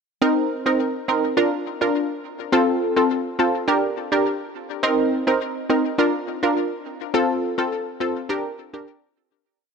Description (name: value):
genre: dancehall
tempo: 104 BPM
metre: 4/4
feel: straight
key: Bb major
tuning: A4 = 440 Hz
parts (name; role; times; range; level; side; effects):
- analog pluck; solo; 0.2-8.9 s; C4 to Bb4; -20 LUFS; equal; chorus, ping-pong delay
room: light reverb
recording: none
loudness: -19 LUFS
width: side -5 dB against mid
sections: 0.2-9.4 chorus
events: fade-out 7.1-9.4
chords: 0.2 Cm7; 1.4 Bb; 2.5 F; 3.7 Gm; 4.8 Cm7; 6.0 Bb; 7.1 F; 8.3 Gm